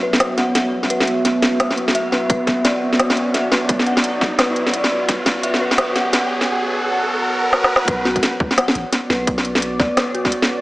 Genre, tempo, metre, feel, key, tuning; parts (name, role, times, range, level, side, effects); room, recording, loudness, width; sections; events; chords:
half-time drum and bass; 172 BPM; 4/4; swing 60% on 16ths, half-time; B minor; A4 = 440 Hz
deep dark ambient pad; sustained chords; 0.0-10.6 s; B3 to F#5; -22 LUFS; equal; chorus, built-in reverb, vintage 12-bit sampler grit, sidechain pumping
dark detuned synth bell; arpeggios; 0.0-10.6 s; F#4 to F#5; -24 LUFS; left 1 dB; chorus, vintage 12-bit sampler grit, low-pass filter, tape echo
riser; sound effects; 0.3-7.9 s; -25 LUFS; equal
organic electronic drum kit; drums; 0.1-10.5 s; hi-hat, snare drum; -18 LUFS; equal; studio ambience
electronic kick drum; drums; 2.3-5.3, 7.9-10.3 s; -21 LUFS; equal; overdrive, studio ambience
long sustained 808-style bass; bass; 7.9-9.9 s; A1 to D2; -30 LUFS; equal; tube saturation
wet lush hall reverb, RT60 1.7 s, digital ambience; high-pass filter, small speaker sound; -15 LUFS; side -19 dB against mid
0.0-7.9 A section; 7.9-10.6 B section
build-up 0.0-7.9; riser 0.3-7.9; drum fill 7.5-7.9; drop 7.9-10.6
0.0 Bm